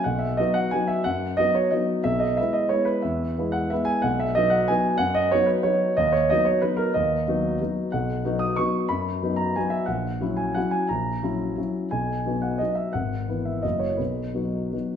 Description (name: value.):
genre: classical, piano waltz.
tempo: 160-197 BPM.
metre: 3/4.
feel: rubato.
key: B major.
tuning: A4 = 439 Hz.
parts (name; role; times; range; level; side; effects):
dark concert grand piano; solo; 0.0-15.0 s; F#1 to D#6; -22 LUFS; equal; none.
room: wet stone room reverb, RT60 1.3 s.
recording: none.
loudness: -22 LUFS.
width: side -8 dB against mid.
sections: 0.0-15.0 A section.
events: none.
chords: 0.0 B; 6.0 B/D#; 7.9 B; 9.9 F#7/A#; 11.9 B; 12.9 E/G#; 13.6 F#7; 14.0 B.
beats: | 0.05 0.39 0.73 | 1.06 1.39 1.73 | 2.06 2.38 2.72 | 3.04 3.37 3.72 | 4.05 4.37 4.70 | 5.01 5.33 5.66 | 5.98 6.29 6.62 | 6.94 7.26 7.60 | 7.92 8.23 8.57 | 8.90 9.22 9.56 | 9.89 10.22 10.57 | 10.90 11.23 11.58 | 11.92 12.25 12.60 | 12.94 13.28 13.64 | 13.99 14.36 14.73.